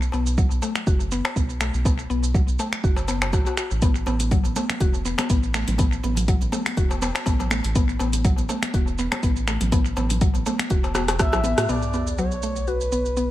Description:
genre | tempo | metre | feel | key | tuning
afro house | 122 BPM | 4/4 | swing 55% on 16ths | B minor | A4 = 440 Hz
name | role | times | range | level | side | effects
round analog bass | bass | 0.0-13.3 s | E1 to A2 | -26 LUFS | equal | sidechain pumping
deep house drum kit | drums | 0.0-13.3 s | finger snaps, hi-hat, rim click, shaker | -29 LUFS | right 1 dB | analog delay
mallet-like synth pluck | arpeggios | 0.1-13.2 s | F#3 to F#4 | -28 LUFS | left 2 dB | chorus, sidechain pumping, analog delay
darbuka | percussion | 0.1-11.4 s | none | -33 LUFS | left 3 dB | analog delay
electronic kick drum | drums | 0.4-11.3 s | none | -22 LUFS | equal | none
congas | percussion | 4.1-11.7 s | none | -31 LUFS | equal | analog delay
expressive portamento lead | melody | 11.2-13.3 s | B4 to E5 | -27 LUFS | equal | chorus, analog delay
sub drop | sound effects | 11.7-13.3 s | none | -32 LUFS | equal | none
room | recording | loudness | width
digital ambience | echo-heavy mix | -20 LUFS | side -14 dB against mid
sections
0.0-11.7 A section; 11.7-13.3 B section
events
drum fill 11.0-11.7; band accent 11.6; impact 11.7-13.3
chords
0.0 B5; 3.8 A5; 11.7 Bmadd9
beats
0.38 0.87 1.36 | 1.86 2.35 2.84 3.33 | 3.82 4.32 4.81 5.30 | 5.79 6.28 6.77 7.27 | 7.76 8.25 8.74 9.23 | 9.72 10.22 10.71 11.20 | 11.69 12.18 12.68 13.17

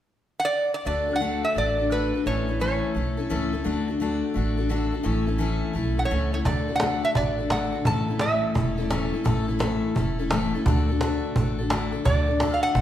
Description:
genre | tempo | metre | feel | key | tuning
honky-tonk and classic country | 171 BPM | 4/4 | swing 66% on 8ths | D major | A4 = 439 Hz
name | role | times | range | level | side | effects
lap resonator guitar | melody | 0.4-3.5, 6.0-9.1, 12.1-12.8 s | B4 to A5 | -25 LUFS | right 1 dB | none
picked steel-string acoustic guitar | accompaniment | 0.8-12.8 s | A2 to A4 | -26 LUFS | left 3 dB | none
upright bass | bass | 0.9-12.8 s | E1 to D2 | -28 LUFS | right 1 dB | none
cajon | drums | 6.5-12.8 s | none | -27 LUFS | right 1 dB | none
room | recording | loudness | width
moderate scoring stage reverb, RT60 1.5 s | recorded in a church or concert hall | -22 LUFS | side -11 dB against mid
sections
0.9-12.1 A section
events
none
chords
0.0 N.C.; 0.9 D; 2.3 A; 3.7 D; 5.1 A; 6.5 D; 7.9 A; 10.7 D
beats
0.16 0.51 | 0.85 1.21 1.55 1.91 | 2.25 2.60 2.96 3.31 | 3.65 4.00 4.36 4.71 | 5.05 5.41 5.75 6.11 | 6.46 6.80 7.16 7.51 | 7.86 8.21 8.56 8.91 | 9.26 9.61 9.96 10.31 | 10.66 11.01 11.36 11.71 | 12.06 12.41 12.76

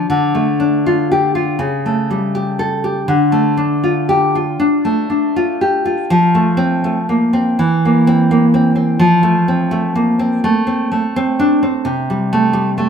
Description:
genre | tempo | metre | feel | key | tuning
romantic piece for solo classical guitar | 82 BPM | 4/4 | uneven beats, rubato | D minor | A4 = 439 Hz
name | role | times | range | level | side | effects
nylon-string guitar | solo | 0.0-12.9 s | C3 to A4 | -12 LUFS | equal | none
room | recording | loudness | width
moderate scoring stage reverb, RT60 1.8 s | minimal, uncompressed stereo recording | -13 LUFS | side -7 dB against mid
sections
0.1-12.9 A section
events
none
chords
0.1 Dm; 1.6 A7/C#; 3.1 Dm; 6.1 F; 7.6 C7/E; 9.0 F; 11.9 Am7/C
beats
| 0.09 0.86 1.60 2.35 | 3.10 3.85 4.61 5.36 | 6.11 6.84 7.59 8.30 | 9.00 9.72 10.43 11.14 | 11.86 12.54

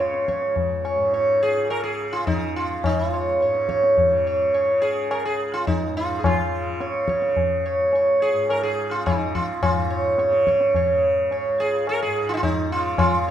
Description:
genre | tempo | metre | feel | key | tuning
indian classical, Hindustani | 106 BPM | 3/4 | straight | unclear | A4 = 441 Hz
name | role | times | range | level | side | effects
sitar | melody | 0.0-13.3 s | Eb4 to Db5 | -20 LUFS | right 1 dB | none
tanpura | drone | 0.0-13.3 s | Db2 to Db3 | -32 LUFS | equal | none
tabla | percussion | 0.1-13.2 s | none | -26 LUFS | left 3 dB | none
room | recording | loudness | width
light reverb | minimal, uncompressed stereo recording | -19 LUFS | side -10 dB against mid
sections
0.0-9.6 A section; 9.6-13.3 B section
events
none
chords
none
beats
0.56 | 1.13 1.70 2.27 | 2.84 3.41 3.97 | 4.54 5.11 5.67 | 6.24 6.81 7.37 | 7.93 8.50 9.06 | 9.62 10.19 10.75 | 11.31 11.87 12.43 | 12.99

